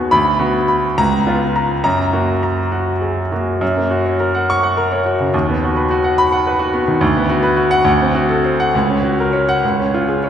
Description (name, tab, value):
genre	classical, virtuoso piano study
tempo	65-72 BPM (dotted quarters)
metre	6/8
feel	rubato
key	F# major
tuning	A4 = 441 Hz
part	clear baby grand piano	solo	0.0-10.3 s	C#2 to C#6	-14 LUFS	equal	none
room	wet scoring stage reverb, RT60 2.0 s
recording	recorded in a church or concert hall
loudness	-14 LUFS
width	side -9 dB against mid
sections	0.0-3.6 A section; 3.6-10.3 A section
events	none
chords	0.1 Bm/D; 1.0 C#6; 1.8 F#; 5.3 B/D#; 7.0 Bm/D; 7.9 D7; 8.7 F#/C#; 9.6 C#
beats	| 0.11 0.96 | 1.83 2.71 | 3.61 4.49 | 5.33 6.17 | 7.01 7.86 | 8.73 9.63